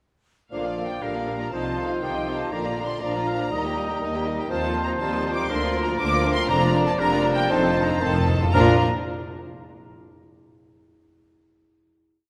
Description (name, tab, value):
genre	quick classical-period movement for symphony orchestra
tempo	120 BPM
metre	4/4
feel	uneven beats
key	Bb major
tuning	A4 = 441 Hz
part	rich studio violin section	melody	0.5-8.8 s	F5 to D6	-33 LUFS	equal	none
part	hollow flute section	second line	0.5-8.8 s	F5 to D6	-33 LUFS	equal	none
part	rich studio violin section	second line	0.5-8.8 s	D4 to G5	-35 LUFS	equal	none
part	warm clarinet	second line	0.5-8.8 s	C4 to G4	-35 LUFS	equal	none
part	warm oboe	second line	0.5-8.8 s	Bb4 to F5	-33 LUFS	equal	none
part	dark bassoon	accompaniment	0.5-8.8 s	D3 to G3	-34 LUFS	equal	none
part	rich studio viola section	accompaniment	0.5-8.8 s	D3 to G4	-36 LUFS	equal	none
part	mellow French horn section	sustained chords	0.5-8.8 s	F3 to Eb4	-32 LUFS	equal	none
part	rich studio cello section	bass	0.5-8.8 s	D2 to C3	-33 LUFS	equal	none
part	warm studio double bass section	bass	0.5-8.8 s	F1 to Eb2	-33 LUFS	equal	none
part	timpani	percussion	6.5-8.8 s	F2 to Bb2	-30 LUFS	equal	none
room	wet concert hall reverb, RT60 2.3 s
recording	none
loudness	-23 LUFS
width	mono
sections	0.5-8.5 A section; 8.5-10.6 final chord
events	timpani fill 7.5-8.5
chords	0.5 Bb; 1.5 F7/C; 2.5 Bb; 3.5 Eb; 4.5 F7/Eb; 5.5 Bb/D; 6.5 Bb/F; 7.5 F7; 8.5 Bb